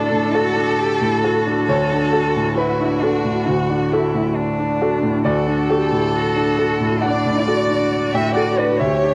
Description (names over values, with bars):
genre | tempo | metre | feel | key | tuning
neoclassical piano and strings | 67 BPM | 4/4 | rubato | D major | A4 = 440 Hz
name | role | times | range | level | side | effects
rich chamber violin section | melody | 0.0-9.1 s | F#4 to E5 | -24 LUFS | equal | cassette tape, plate reverb
rich cello | second line | 0.0-9.1 s | D4 to G4 | -26 LUFS | equal | cassette tape, plate reverb, tape echo
clear grand piano | accompaniment | 0.0-9.1 s | D2 to G5 | -21 LUFS | equal | cassette tape, plate reverb
room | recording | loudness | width
moderate small room ambience, RT60 0.5 s | home recording on cassette | -18 LUFS | mono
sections
0.0-9.1 A section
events
none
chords
0.0 D